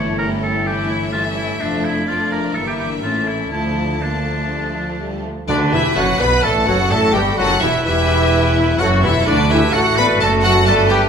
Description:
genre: quick classical-period movement for symphony orchestra.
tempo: 127 BPM.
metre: 4/4.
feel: straight.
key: D minor, D major from 5.5 s.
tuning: A4 = 440 Hz.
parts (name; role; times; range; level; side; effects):
clear chamber violin section; melody; 0.0-11.0 s; G4 to B5; -22 LUFS; left 3 dB; none.
clear chamber violin section; second line; 0.0-11.1 s; A3 to B4; -26 LUFS; left 2 dB; none.
clear oboe; second line; 0.0-11.1 s; D4 to C#5; -24 LUFS; equal; none.
rich chamber viola section; accompaniment; 0.0-11.1 s; E3 to B4; -24 LUFS; right 2 dB; none.
mellow French horn section; sustained chords; 0.0-11.1 s; D3 to F4; -25 LUFS; left 4 dB; none.
clear studio double bass section; bass; 0.0-11.1 s; E1 to D2; -23 LUFS; right 1 dB; none.
warm studio cello section; bass; 0.0-11.1 s; D2 to D3; -24 LUFS; right 2 dB; none.
concert flute; second line; 5.5-11.1 s; F#4 to D5; -26 LUFS; left 2 dB; none.
warm clarinet; second line; 5.5-11.1 s; D4 to B4; -25 LUFS; equal; none.
mellow bassoon; accompaniment; 5.5-11.1 s; D3 to B3; -24 LUFS; right 2 dB; none.
clear trumpet; stabs; 5.5-11.0 s; D4 to B4; -22 LUFS; right 1 dB; none.
timpani; percussion; 5.5-6.2 s; D3; -26 LUFS; left 1 dB; none.
room: wet recital hall reverb, RT60 1.7 s.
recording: minimal, uncompressed stereo recording.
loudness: -14 LUFS.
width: side -7 dB against mid.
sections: 0.0-5.5 A section; 5.5-11.1 A section.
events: none.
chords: 0.0 A7/G; 1.6 Dm/F; 2.5 Edim/G; 3.0 A; 3.5 Dm; 5.5 D; 7.4 A5; 9.3 D.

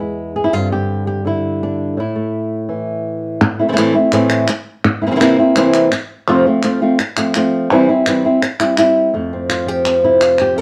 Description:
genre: flamenco.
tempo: 168 BPM.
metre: 4/4.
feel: straight.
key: A minor.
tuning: A4 = 440 Hz.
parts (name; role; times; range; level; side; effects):
flamenco guitar; melody; 0.0-10.6 s; E2 to B4; -16 LUFS; equal; none.
palmas hand claps; percussion; 3.4-10.6 s; none; -23 LUFS; equal; none.
room: light reverb.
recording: worn, warbling old tape, cassette tape, warbly pitch drift.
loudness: -15 LUFS.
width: mono.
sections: 0.0-3.4 A section; 3.4-9.1 B section; 9.1-10.6 C section.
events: none.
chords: 0.0 E; 0.5 Gsus4; 2.0 A5; 3.4 Am; 4.8 C7; 6.3 F; 7.7 C; 9.1 F.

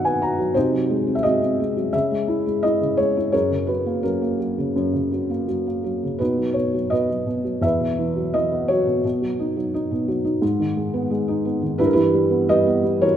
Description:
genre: classical, lyrical solo piano.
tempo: 86 BPM.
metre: 4/4.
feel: rubato.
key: B major.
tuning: A4 = 440 Hz.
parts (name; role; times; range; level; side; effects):
felt-muted upright piano; solo; 0.0-13.2 s; E2 to A#5; -19 LUFS; equal; none.
room: moderate concert hall reverb, RT60 2.3 s.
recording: minimal, uncompressed stereo recording.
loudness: -19 LUFS.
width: side -10 dB against mid.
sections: 0.0-13.2 A section.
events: felt piano fill 0.0-0.6.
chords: 0.0 B; 0.6 G#7/B#; 1.9 C#m; 3.3 F#add9; 6.2 B; 7.6 Esus2; 9.0 B; 10.4 G#m; 11.8 Em/G.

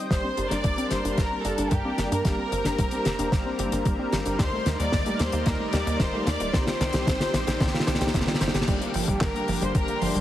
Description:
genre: italo disco.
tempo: 112 BPM.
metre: 4/4.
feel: straight.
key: G minor.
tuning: A4 = 440 Hz.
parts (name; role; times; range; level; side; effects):
lush unison pad; sustained chords; 0.0-10.2 s; D3 to Bb4; -32 LUFS; equal; chorus.
warbly dusty pluck; arpeggios; 0.0-10.2 s; Eb3 to C5; -32 LUFS; right 2 dB; chorus, cassette tape, tape echo.
tine electric piano; stabs; 0.0-10.2 s; G3 to G4; -34 LUFS; left 1 dB; medium tremolo, low-pass filter.
clear symphonic violin section; melody; 0.1-10.2 s; G4 to D6; -31 LUFS; left 1 dB; tape echo.
tight sequencer bass; bass; 0.1-10.2 s; Eb1 to G2; -31 LUFS; equal; none.
damped 70s drum kit; drums; 0.1-10.2 s; crash cymbal, handclaps, hi-hat, snare drum; -29 LUFS; left 1 dB; studio reverb.
electronic kick drum; drums; 0.1-9.9 s; none; -27 LUFS; equal; overdrive, studio reverb.
room: moderate lush hall reverb, RT60 2.1 s.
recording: heavily compressed radio sound.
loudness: -23 LUFS.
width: side -13 dB against mid.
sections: 0.1-8.7 A section; 8.7-10.2 B section.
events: drum fill 0.1-8.7; filter sweep on tine electric piano 0.1-8.7.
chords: 0.1 Gm; 4.4 Eb; 6.5 Cm; 8.7 Gm.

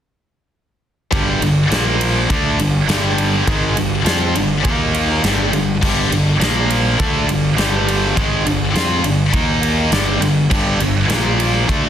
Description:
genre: hard rock.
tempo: 102 BPM.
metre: 4/4.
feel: straight.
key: G minor.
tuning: A4 = 440 Hz.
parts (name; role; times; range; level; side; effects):
heavy high-gain guitar; riff; 1.1-11.9 s; G2 to F4; -16 LUFS; equal; distortion.
fuzz picked electric bass; bass; 1.1-11.9 s; G1 to F2; -20 LUFS; equal; overdrive.
huge arena drum kit; drums; 1.1-11.8 s; crash cymbal, kick drum, ride cymbal, snare drum; -20 LUFS; equal; none.
room: small room reverb.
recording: dense, heavily limited modern master.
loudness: -14 LUFS.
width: side -9 dB against mid.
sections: 1.1-11.9 A section.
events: none.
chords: 1.1 G5; 1.7 Bb5; 2.3 G5; 4.6 Eb5; 5.2 G5; 6.4 Bb5; 7.0 G5; 9.3 Eb5; 9.9 G5; 11.1 Bb5.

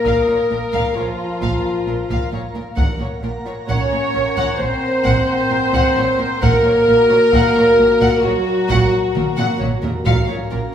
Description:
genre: cinematic, suspense film score.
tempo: 66 BPM.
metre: 4/4.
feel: straight.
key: unclear.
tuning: A4 = 440 Hz.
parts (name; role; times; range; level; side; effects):
clear clarinet; second line; 0.0-9.6 s; F4 to Db5; -18 LUFS; left 1 dB; none.
warm studio violin section; second line; 0.0-9.6 s; F4 to Db5; -25 LUFS; left 2 dB; none.
dark symphonic viola section; accompaniment; 0.0-9.6 s; F4 to Db5; -22 LUFS; right 1 dB; none.
glassy FM pad; sustained chords; 0.0-10.7 s; Db4 to Bb5; -27 LUFS; right 1 dB; ensemble chorus, built-in reverb.
warm French horn section; sustained chords; 0.0-9.6 s; F3 to Db4; -23 LUFS; left 1 dB; none.
warm symphonic cello section; bass; 0.0-10.6 s; Bb2; -26 LUFS; right 3 dB; none.
concert harp; texture; 0.0-10.7 s; F5 to Db7; -32 LUFS; left 6 dB; none.
warm symphonic violin section; melody; 0.1-10.6 s; Bb4 to Gb5; -26 LUFS; left 3 dB; none.
dark studio double bass section; bass; 0.1-10.6 s; Bb1; -24 LUFS; right 3 dB; none.
taiko ensemble; drums; 0.1-10.7 s; none; -24 LUFS; equal; none.
room: wet recital hall reverb, RT60 1.3 s.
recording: recorded in a church or concert hall.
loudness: -14 LUFS.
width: side -9 dB against mid.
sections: 0.0-10.7 A section.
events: drum fill 9.1-10.1.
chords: 0.0 Bb5; 2.8 Gb/Bb; 10.1 Bbm.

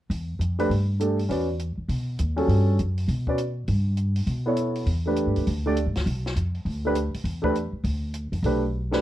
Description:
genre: modal jazz.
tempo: 202 BPM.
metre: 4/4.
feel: swing 62% on 8ths.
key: E dorian.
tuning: A4 = 441 Hz.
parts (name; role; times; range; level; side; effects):
upright bass; bass; 0.1-9.0 s; B1 to B2; -25 LUFS; equal; none.
compact cocktail drum kit; drums; 0.1-9.0 s; hi-hat, kick drum, snare drum; -37 LUFS; left 1 dB; none.
dark baby grand piano; accompaniment; 0.6-9.0 s; G3 to D5; -25 LUFS; right 1 dB; none.
room: light reverb.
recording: worn, warbling old tape, cassette tape, warbly pitch drift.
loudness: -23 LUFS.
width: side -13 dB against mid.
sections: 0.1-9.0 A section.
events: drum fill 8.7.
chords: 0.1 Emadd9; 4.9 Gadd9.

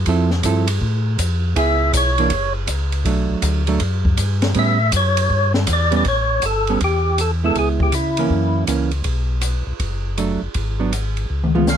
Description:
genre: soul jazz organ trio.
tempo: 160 BPM.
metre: 4/4.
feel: swing 66% on 8ths.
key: unclear.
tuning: A4 = 440 Hz.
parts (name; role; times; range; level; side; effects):
mellow tonewheel organ; bass; 0.0-11.8 s; F#1 to C#3; -20 LUFS; left 1 dB; slow rotary speaker.
hollow-body jazz guitar; accompaniment; 0.1-11.7 s; E3 to A4; -21 LUFS; right 6 dB; none.
open jazz drum kit; drums; 0.1-11.8 s; hi-hat, kick drum, ride cymbal, snare drum, toms; -23 LUFS; equal; none.
percussive tonewheel organ; melody; 1.6-8.6, 11.7-11.8 s; E4 to E#5; -19 LUFS; left 1 dB; slow rotary speaker, overdrive.
room: little or no reverb.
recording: close, detailed microphones.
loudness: -16 LUFS.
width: side -9 dB against mid.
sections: 0.0-6.1 A section; 6.1-11.8 B section.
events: tonewheel organ solo 0.0-6.1; drum fill 11.3-11.7.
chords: 0.1 Fmaj7; 1.6 C#m7; 2.3 F#5; 3.1 Bm7; 4.6 A9; 7.6 C#m7; 8.3 F#7; 9.1 Bm7; 10.6 G#m7b5.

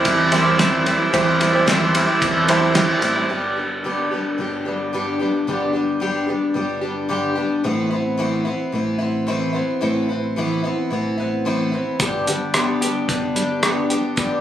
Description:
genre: folk rock and heartland rock.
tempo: 110 BPM.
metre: 4/4.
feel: straight.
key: G major.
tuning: A4 = 440 Hz.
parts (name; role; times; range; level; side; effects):
bright grand piano; accompaniment; 0.0-3.3 s; G4 to A5; -24 LUFS; right 2 dB; none.
picked plugged-in twelve-string acoustic guitar; accompaniment; 0.0-14.4 s; G2 to G4; -22 LUFS; left 2 dB; none.
accordion; sustained chords; 0.0-3.3 s; G4 to C6; -23 LUFS; right 3 dB; none.
clean electric guitar; riff; 0.0-3.3, 12.0-14.4 s; G2 to G4; -21 LUFS; right 1 dB; none.
cloth-damped thuddy drum kit; drums; 0.0-3.2, 12.0-14.3 s; hi-hat, kick drum, ride cymbal, rim click, snare drum; -21 LUFS; equal; none.
fingered electric bass; bass; 0.1-14.4 s; G1 to E2; -28 LUFS; right 1 dB; none.
egg shaker; percussion; 0.1-3.2 s; none; -37 LUFS; left 1 dB; none.
room: light reverb.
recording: recorded on a phone in the room, club reverb, compression.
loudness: -17 LUFS.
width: side -11 dB against mid.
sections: 0.0-3.3 A section; 3.3-14.4 B section.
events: grand piano fill 2.2-3.3.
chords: 0.0 C/E; 3.3 G; 7.6 Amadd9; 12.0 G.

